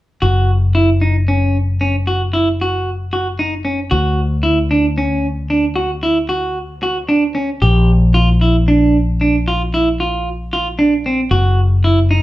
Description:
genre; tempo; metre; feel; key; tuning
progressive instrumental, progressive; 114 BPM; 7/4; straight; unclear; A4 = 440 Hz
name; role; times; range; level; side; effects
clean electric guitar; arpeggios; 0.2-12.2 s; B#3 to G4; -16 LUFS; right 1 dB; none
fretless electric bass; bass; 0.2-12.2 s; F#1 to D2; -16 LUFS; left 1 dB; none
room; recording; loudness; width
wet large studio reverb, RT60 0.8 s; band playing live in one room; -13 LUFS; side -16 dB against mid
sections
0.2-12.2 A section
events
none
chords
0.2 F#5; 3.9 D; 7.6 A#; 11.3 F#5

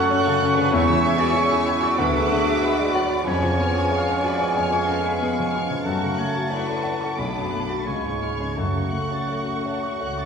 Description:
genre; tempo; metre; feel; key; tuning
classical, romantic movement for piano and orchestra; 84-96 BPM; 4/4; rubato; F# minor; A4 = 445 Hz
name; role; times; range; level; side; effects
rich studio violin section; melody; 0.0-10.3 s; C#6 to F#6; -34 LUFS; right 1 dB; none
warm baby grand piano; melody; 0.0-10.3 s; B1 to C#6; -25 LUFS; left 3 dB; none
clear oboe; second line; 0.0-10.3 s; E5 to B5; -32 LUFS; right 1 dB; none
mellow clarinet; second line; 0.0-10.3 s; B3 to E4; -34 LUFS; left 2 dB; none
mellow hollow flute section; second line; 0.0-10.3 s; G#5 to C#6; -32 LUFS; left 1 dB; none
warm studio violin section; second line; 0.0-10.3 s; F#5 to A6; -33 LUFS; left 2 dB; none
dark bassoon; accompaniment; 0.0-10.3 s; E#3 to C#4; -32 LUFS; right 3 dB; none
warm studio viola section; accompaniment; 0.0-10.3 s; G#3 to G#4; -33 LUFS; right 1 dB; none
clear trombone section; sustained chords; 0.0-10.3 s; C#3 to B3; -32 LUFS; right 2 dB; none
mellow French horn section; sustained chords; 0.0-10.3 s; C#4 to G#4; -33 LUFS; left 1 dB; none
mellow trumpet section; stabs; 0.0-10.3 s; G#5 to C#6; -28 LUFS; right 3 dB; none
rich studio double bass section; bass; 0.0-10.3 s; B1 to F#2; -32 LUFS; right 2 dB; none
warm studio cello section; bass; 0.0-10.3 s; E#4 to E5; -31 LUFS; right 2 dB; none
timpani; percussion; 8.6-9.6 s; F#2; -32 LUFS; equal; none
room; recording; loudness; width
wet recital hall reverb, RT60 1.5 s; recorded in a church or concert hall; -20 LUFS; side -6 dB against mid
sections
0.0-10.3 A section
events
none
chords
0.0 F#m; 0.7 C#m/E; 2.0 Bm/D; 3.3 C#7/E#; 5.9 F#m; 7.2 Bm7; 7.9 C#; 8.6 F#m

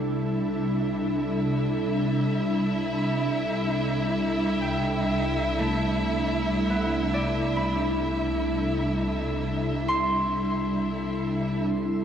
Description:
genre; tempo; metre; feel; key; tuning
ambient; free time; none; none; C major; A4 = 440 Hz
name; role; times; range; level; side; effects
ethereal airy pad; sustained chords; 0.0-12.0 s; C3 to A4; -26 LUFS; equal; ensemble chorus, built-in reverb, shimmer reverb
concert harp; arpeggios; 0.0-12.0 s; A3 to C6; -32 LUFS; equal; diffuse ambient delay, shimmer reverb
bright studio double bass section; bass; 0.0-11.7 s; C2; -35 LUFS; equal; none
dark studio violin section; texture; 0.0-12.0 s; E4 to E5; -31 LUFS; equal; shimmer reverb
room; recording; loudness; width
wet concert hall reverb, RT60 2.5 s; none; -24 LUFS; side -8 dB against mid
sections
0.0-11.7 A section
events
fade-in on harp 0.0-11.7; fade-in on double bass section 0.0-11.7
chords
0.0 C69

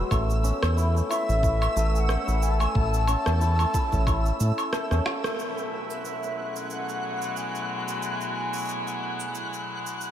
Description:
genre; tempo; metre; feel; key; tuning
folktronica; 91 BPM; 4/4; swing 56% on 16ths; unclear; A4 = 440 Hz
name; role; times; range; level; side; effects
cimbalom; arpeggios; 0.0-9.7 s; F#3 to A4; -32 LUFS; left 1 dB; analog delay
round analog bass; bass; 0.0-5.0 s; A1 to A2; -23 LUFS; equal; none
flickering grainy texture; texture; 0.0-10.1 s; E6 to F#6; -36 LUFS; right 1 dB; built-in reverb
electronic kick drum; drums; 0.1-4.2 s; none; -27 LUFS; equal; none
electronic woodblock, shaker and rim click; drums; 0.1-10.1 s; none; -32 LUFS; right 1 dB; none
breathy mellow wooden flute; melody; 1.1-10.1 s; E5 to A5; -32 LUFS; left 1 dB; analog delay
rich string quartet; sustained chords; 5.4-10.1 s; B2 to E4; -33 LUFS; left 2 dB; low-pass filter
room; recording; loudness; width
wet cathedral reverb, RT60 5.4 s; dreamy mix soaked in reverb; -24 LUFS; side -10 dB against mid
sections
0.0-5.4 A section; 5.4-10.1 B section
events
break 4.7-5.4; drum fill 4.9-5.4; band accent 5.2-5.6; filter sweep on string quartet 5.4-10.1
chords
0.1 A; 5.4 Eadd9

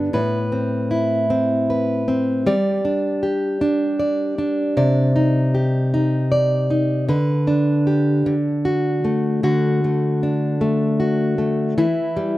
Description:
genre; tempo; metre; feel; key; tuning
pop; 51 BPM (dotted quarters); 6/8; straight; G major; A4 = 438 Hz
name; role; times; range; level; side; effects
fingerpicked plugged-in steel-string acoustic guitar; solo; 0.0-12.4 s; G2 to D5; -17 LUFS; equal; slapback echo
room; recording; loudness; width
light reverb; recorded outdoors, with no room sound; -17 LUFS; side -16 dB against mid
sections
0.1-12.4 A section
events
none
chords
0.1 Amadd9; 2.5 G5; 4.8 Cmadd9; 7.1 G/D; 8.3 D; 11.8 Em

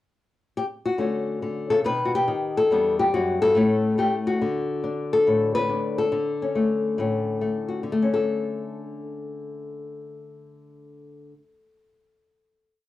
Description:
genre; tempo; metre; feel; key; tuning
solo jazz; 141 BPM; 4/4; swing 66% on 8ths; D major; A4 = 439 Hz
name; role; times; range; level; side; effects
nylon-string guitar; solo; 0.6-11.5 s; E2 to B4; -22 LUFS; left 2 dB; cassette tape
room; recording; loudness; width
wet small room reverb, RT60 0.5 s; home recording on cassette; -21 LUFS; side -14 dB against mid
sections
0.0-1.0 pickup bar; 1.0-7.8 A section; 7.8-11.2 final chord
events
none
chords
0.0 N.C.; 1.0 Dmaj7; 1.8 B; 2.7 Em9; 3.6 A; 4.4 Dmaj7; 7.8 D5

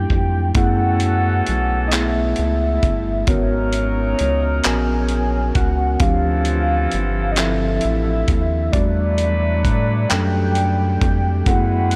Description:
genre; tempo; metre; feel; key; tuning
slow six-eight R&B; 44 BPM (dotted quarters); 6/8; straight; unclear; A4 = 440 Hz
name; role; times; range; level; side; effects
warm velvety synth lead; melody; 0.0-12.0 s; C#5 to G#5; -26 LUFS; equal; chorus, tremolo
mellow tine electric piano; accompaniment; 0.0-12.0 s; F3 to A#4; -25 LUFS; equal; none
rubbery square bass; bass; 0.0-12.0 s; G1 to A2; -22 LUFS; equal; none
dusty soul sampler-style drum kit; drums; 0.1-12.0 s; handclaps, hi-hat, kick drum; -23 LUFS; equal; none
warm horn section; stabs; 0.5-12.0 s; E3 to B4; -31 LUFS; equal; digital delay
room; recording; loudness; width
light reverb; low-pass filter; -18 LUFS; mono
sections
0.6-12.0 A section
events
none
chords
0.0 Em11; 0.6 F#m11; 3.3 G#m11; 6.0 Dm11; 8.7 Em11

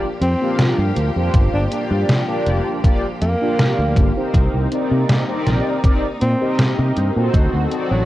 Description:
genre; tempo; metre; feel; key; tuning
vaporwave; 80 BPM; 4/4; straight; G minor; A4 = 440 Hz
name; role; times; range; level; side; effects
mellow synth brass; accompaniment; 0.0-8.1 s; Bb3 to F5; -22 LUFS; equal; wide subtle chorus, tape echo
clear studio string section; sustained chords; 0.0-8.1 s; Eb3 to G4; -28 LUFS; left 1 dB; none
breathy alto saxophone; melody; 0.2-8.1 s; F#3 to D4; -25 LUFS; equal; tape echo
fingered electric bass; bass; 0.2-8.0 s; F1 to C3; -18 LUFS; equal; none
detuned 8-bit digital drum machine; drums; 0.2-7.9 s; hi-hat, snare drum; -18 LUFS; equal; none
electronic kick drum; drums; 1.3-7.5 s; none; -15 LUFS; equal; none
room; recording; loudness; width
light reverb; worn, warbling old tape, cassette tape, warbly pitch drift; -15 LUFS; side -15 dB against mid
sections
0.0-8.1 A section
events
none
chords
0.0 Gm7; 4.3 Cm9; 7.3 D7b9

